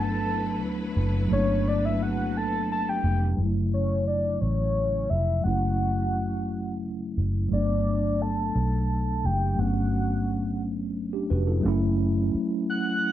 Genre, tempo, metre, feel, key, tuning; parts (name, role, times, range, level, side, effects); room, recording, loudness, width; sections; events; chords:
slow six-eight R&B; 58 BPM (dotted quarters); 6/8; straight; F# phrygian; A4 = 441 Hz
soft octave-layered synth lead; melody; 0.0-13.1 s; C#5 to F#6; -29 LUFS; left 1 dB; chorus, slapback echo
mellow tine electric piano; accompaniment; 0.0-13.1 s; C#3 to B4; -28 LUFS; equal; medium stereo tremolo
clear studio string section; sustained chords; 0.0-3.3 s; F#3 to B4; -37 LUFS; left 1 dB
vintage muted fingered electric bass; bass; 0.0-12.4 s; E#1 to D2; -27 LUFS; equal
moderate studio reverb, RT60 0.6 s; dark, warm production, low-pass filter; -23 LUFS; side -12 dB against mid
0.0-3.4 A section; 3.4-11.6 B section; 11.6-13.1 C section
soft synth lead solo 0.0-3.4; filter sweep 3.4-11.6
0.0 Gmaj9; 3.4 F#m7; 7.5 Gmaj9; 11.6 F#m7